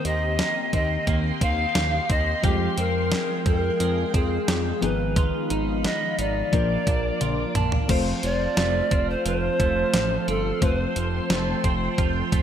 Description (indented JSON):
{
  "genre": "1980s-style pop",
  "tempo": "88 BPM",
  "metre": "4/4",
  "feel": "straight",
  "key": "unclear",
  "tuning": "A4 = 440 Hz",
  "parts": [
    { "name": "bright polished pan flute", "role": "melody", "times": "0.0-11.6 s", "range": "G4 to F5", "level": "-27 LUFS", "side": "equal", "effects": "none" },
    { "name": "FM electric piano with tremolo", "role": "accompaniment", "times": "0.0-12.4 s", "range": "Eb3 to G5", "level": "-30 LUFS", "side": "left 6 dB", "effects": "none" },
    { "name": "ensemble organ-string", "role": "sustained chords", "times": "0.0-12.4 s", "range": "Ab3 to D6", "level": "-32 LUFS", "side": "equal", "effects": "phaser, ensemble chorus" },
    { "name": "twelve-string electric guitar", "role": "riff", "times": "0.0-12.4 s", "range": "Eb3 to G4", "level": "-31 LUFS", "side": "right 6 dB", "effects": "analog chorus" },
    { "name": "clean 12-bit digital drum machine", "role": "drums", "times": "0.0-12.4 s", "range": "crash cymbal, hi-hat, kick drum, snare drum, toms", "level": "-25 LUFS", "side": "equal", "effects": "gated reverb" },
    { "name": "fat analog bass", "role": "bass", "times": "0.1-12.4 s", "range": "F1 to F2", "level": "-27 LUFS", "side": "equal", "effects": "none" }
  ],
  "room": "moderate plate reverb, RT60 2.0 s",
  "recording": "bright 1980s-style digital production",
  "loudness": "-21 LUFS",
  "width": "side -9 dB against mid",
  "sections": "0.0-7.9 A section; 7.9-12.4 B section",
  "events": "drum fill 7.2-7.9",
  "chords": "0.0 Cm7/Eb; 2.4 Fmadd9; 4.8 Abm6; 6.5 Bb; 7.9 F"
}